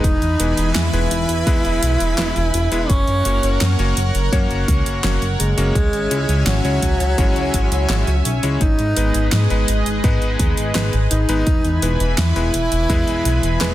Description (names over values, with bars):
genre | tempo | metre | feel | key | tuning
synthwave | 84 BPM | 4/4 | straight | unclear | A4 = 441 Hz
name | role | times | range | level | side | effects
breathy tenor saxophone | melody | 0.0-13.7 s | F#3 to E4 | -23 LUFS | right 1 dB | digital delay
chorused pulse-width pad | sustained chords | 0.0-13.7 s | E3 to B5 | -25 LUFS | equal | sidechain pumping
chorused synth bass | bass | 0.0-13.7 s | E1 to G#2 | -19 LUFS | equal | sidechain pumping
electronic kick drum | drums | 0.0-13.0 s | none | -19 LUFS | equal | none
pop drum kit | drums | 0.0-13.7 s | handclaps, hi-hat, snare drum | -24 LUFS | right 1 dB | none
bright electric grand piano | stabs | 0.4-13.7 s | E3 to C#5 | -26 LUFS | left 2 dB | none
room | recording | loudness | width
little or no reverb | dense, heavily limited modern master | -15 LUFS | side -14 dB against mid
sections
0.0-13.7 A section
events
kick drops out 7.9-8.6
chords
0.0 E; 2.9 F#; 5.8 C#m; 8.6 G#m; 11.5 E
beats
| 0.04 0.75 1.47 2.18 | 2.90 3.61 4.33 5.04 | 5.75 6.47 7.18 7.90 | 8.61 9.32 10.04 10.75 | 11.47 12.18 12.90 13.61